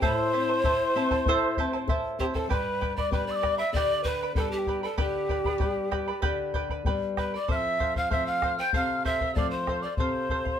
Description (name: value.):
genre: andean folk, Andean ensemble.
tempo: 96 BPM.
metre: 4/4.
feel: straight.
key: unclear.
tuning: A4 = 440 Hz.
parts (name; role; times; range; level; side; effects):
breathy reedy pan flute; melody; 0.0-10.6 s; G4 to G5; -29 LUFS; right 1 dB; none.
hollow quena; second line; 0.0-10.6 s; G5 to G6; -32 LUFS; left 3 dB; none.
charango; accompaniment; 0.0-10.6 s; E4 to B5; -32 LUFS; right 4 dB; none.
flamenco guitar; accompaniment; 0.0-10.6 s; F2 to A4; -33 LUFS; left 5 dB; none.
bombo; percussion; 0.0-10.6 s; none; -30 LUFS; left 2 dB; none.
room: wet small room reverb, RT60 0.6 s.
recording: minimal, uncompressed stereo recording.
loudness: -25 LUFS.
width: side -9 dB against mid.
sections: 0.0-2.5 A section; 2.5-10.6 B section.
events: none.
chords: 0.0 Am; 2.5 G; 7.5 F.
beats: | 0.02 0.64 1.26 1.89 | 2.51 3.13 3.75 4.38 | 5.00 5.62 6.25 6.87 | 7.49 8.11 8.74 9.36 | 9.98.